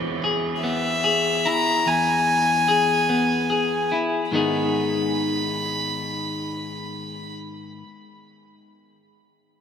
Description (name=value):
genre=rock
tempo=49 BPM (dotted quarters)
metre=6/8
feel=straight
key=G# minor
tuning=A4 = 440 Hz
part: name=clean electric guitar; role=arpeggios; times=0.0-7.9 s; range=E2 to G#4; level=-23 LUFS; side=left 2 dB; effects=tape echo
part: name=rich violin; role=melody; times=0.6-7.3 s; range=E5 to B5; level=-23 LUFS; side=left 2 dB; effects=tape echo
room=moderate huge ambient reverb, RT60 5.1 s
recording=none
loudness=-20 LUFS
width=side -7 dB against mid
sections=0.0-4.3 A section; 4.3-6.8 B section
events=none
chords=0.0 E; 4.3 G#m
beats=0.63 | 1.86 3.09 | 4.32 5.56